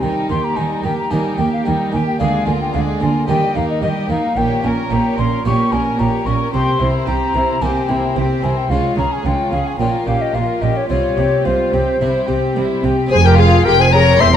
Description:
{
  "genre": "classical, baroque-style concerto movement with solo episodes",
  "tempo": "110 BPM",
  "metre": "4/4",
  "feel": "straight",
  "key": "F minor from 4.4 s",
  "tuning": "A4 = 440 Hz",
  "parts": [
    { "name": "baroque flute", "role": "melody", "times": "0.0-14.4 s", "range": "Ab4 to Db6", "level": "-20 LUFS", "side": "left 3 dB", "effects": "none" },
    { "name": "rich chamber violin section", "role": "melody", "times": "0.0-14.4 s", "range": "F4 to C6", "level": "-24 LUFS", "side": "left 7 dB", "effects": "none" },
    { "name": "rich chamber violin section", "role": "second line", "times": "0.0-14.4 s", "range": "Eb4 to C5", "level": "-23 LUFS", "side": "left 1 dB", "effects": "none" },
    { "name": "harpsichord", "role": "accompaniment", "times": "0.0-14.4 s", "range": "E2 to Ab4", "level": "-24 LUFS", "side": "equal", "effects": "none" },
    { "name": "warm chamber viola section", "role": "accompaniment", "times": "0.0-14.3 s", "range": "G3 to Ab4", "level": "-24 LUFS", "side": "right 1 dB", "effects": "none" },
    { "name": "rich chamber cello section", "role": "bass", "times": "0.0-14.4 s", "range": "E2 to Eb3", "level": "-21 LUFS", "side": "right 3 dB", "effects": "none" },
    { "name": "warm studio double bass section", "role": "bass", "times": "0.0-14.4 s", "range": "E1 to Eb2", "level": "-22 LUFS", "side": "right 3 dB", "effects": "none" }
  ],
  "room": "wet recital hall reverb, RT60 1.6 s",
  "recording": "dark, warm production",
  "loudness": "-14 LUFS",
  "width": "side -9 dB against mid",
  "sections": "0.0-13.1 A section; 13.1-14.4 B section",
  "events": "none",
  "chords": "0.0 Eb; 2.2 Bb7/D; 3.3 Eb; 4.4 Gdim/Bb; 6.5 C7; 8.7 Db; 9.8 Gm7b5/Bb; 10.9 Csus4; 12.0 C; 13.1 Fm"
}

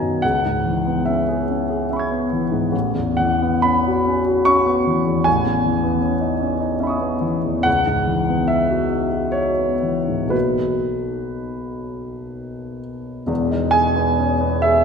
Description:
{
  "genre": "classical, impressionist solo piano",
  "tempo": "59-79 BPM",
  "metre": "3/4",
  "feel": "rubato",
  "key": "unclear",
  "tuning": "A4 = 443 Hz",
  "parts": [
    { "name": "warm grand piano", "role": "solo", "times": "0.0-14.8 s", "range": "E1 to G#6", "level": "-17 LUFS", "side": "equal", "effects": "none" }
  ],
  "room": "wet scoring stage reverb, RT60 1.6 s",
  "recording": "minimal, uncompressed stereo recording",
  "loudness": "-17 LUFS",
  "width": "side -6 dB against mid",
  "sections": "0.0-13.3 A section; 13.3-14.8 B section",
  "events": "none",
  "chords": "0.2 C#m7; 2.7 A69; 5.3 C#m9/A; 7.7 C#m11; 10.3 Bmaj7; 13.3 Emaj7"
}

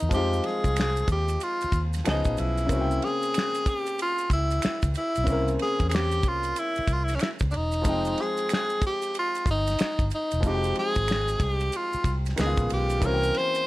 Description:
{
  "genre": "R&B, neo-soul",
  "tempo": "93 BPM",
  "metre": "4/4",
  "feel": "swing 64% on 16ths",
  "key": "F minor",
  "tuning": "A4 = 442 Hz",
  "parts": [
    { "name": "breathy tenor saxophone", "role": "melody", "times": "0.0-13.7 s", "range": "Db4 to C5", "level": "-27 LUFS", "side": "equal", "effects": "none" },
    { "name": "clear concert grand piano", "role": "accompaniment", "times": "0.0-13.7 s", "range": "Db3 to G5", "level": "-32 LUFS", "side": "left 2 dB", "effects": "none" },
    { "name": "vintage muted fingered electric bass", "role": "bass", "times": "0.0-13.3 s", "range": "E1 to F2", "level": "-28 LUFS", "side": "equal", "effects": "none" },
    { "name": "damped 70s drum kit", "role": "drums", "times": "0.0-13.7 s", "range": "finger snaps, kick drum, ride cymbal, snare drum", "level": "-29 LUFS", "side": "equal", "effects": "none" },
    { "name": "maracas and finger snaps", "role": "percussion", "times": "0.0-13.7 s", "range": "none", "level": "-40 LUFS", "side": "right 5 dB", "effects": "none" }
  ],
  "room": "little or no reverb",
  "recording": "none",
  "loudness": "-23 LUFS",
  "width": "side -18 dB against mid",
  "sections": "0.0-13.7 A section",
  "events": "none",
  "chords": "0.0 Fm9; 2.0 Db9; 2.7 C7b9; 7.9 Fm9; 12.4 Db9; 13.0 C7b9"
}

